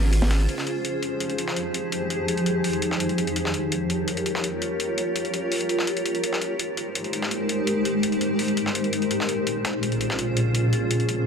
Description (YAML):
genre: drum and bass, jungle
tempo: 167 BPM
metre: 4/4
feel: straight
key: F minor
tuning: A4 = 440 Hz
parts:
  - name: granular cloud pad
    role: sustained chords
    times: 0.0-11.3 s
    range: Bb2 to Db5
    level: -24 LUFS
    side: equal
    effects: built-in reverb
  - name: saturated sub bass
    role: bass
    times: 0.0-0.5 s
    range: Ab1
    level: -20 LUFS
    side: equal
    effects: none
  - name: dusty soul sampler-style drum kit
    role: drums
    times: 0.1-11.2 s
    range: hi-hat, snare drum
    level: -29 LUFS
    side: left 2 dB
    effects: high-pass filter on hats, high-pass filter on snare
room: wet echo chamber reverb, RT60 1.9 s, small room ambience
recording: dense, heavily limited modern master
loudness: -22 LUFS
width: side -6 dB against mid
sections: 0.5-11.3 A section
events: none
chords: 0.5 Fm7; 3.4 Gm7b5; 6.2 Abmaj9; 9.1 Bbm7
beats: 0.13 | 0.49 0.84 1.21 1.56 | 1.92 2.28 2.64 3.00 | 3.36 3.72 4.08 4.44 | 4.80 5.16 5.52 5.88 | 6.24 6.59 6.95 7.31 | 7.67 8.03 8.39 8.75 | 9.11 9.47 9.83 10.19 | 10.55 10.90 11.27